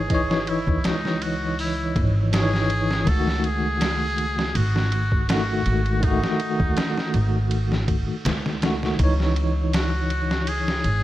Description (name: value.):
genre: trip hop.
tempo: 81 BPM.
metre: 4/4.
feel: swing 54% on 16ths.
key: C# minor.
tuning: A4 = 440 Hz.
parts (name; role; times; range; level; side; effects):
trumpet with metal mute; melody; 0.0-11.0 s; D#4 to A4; -28 LUFS; left 1 dB; vintage 12-bit sampler grit, dub echo.
bell-like tine electric piano; accompaniment; 0.0-11.0 s; D#3 to D#5; -26 LUFS; left 1 dB; fast stereo tremolo, vintage 12-bit sampler grit, tape echo.
upright bass; bass; 0.0-11.0 s; G#1 to D#2; -24 LUFS; equal; none.
trip hop sampler-style drum kit; drums; 0.1-11.0 s; hi-hat, kick drum, ride cymbal, snare drum; -26 LUFS; equal; none.
room: little or no reverb.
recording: none.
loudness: -20 LUFS.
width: side -14 dB against mid.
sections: 0.0-11.0 A section.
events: none.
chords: 0.0 C#madd9; 3.1 D#dim; 9.0 C#madd9.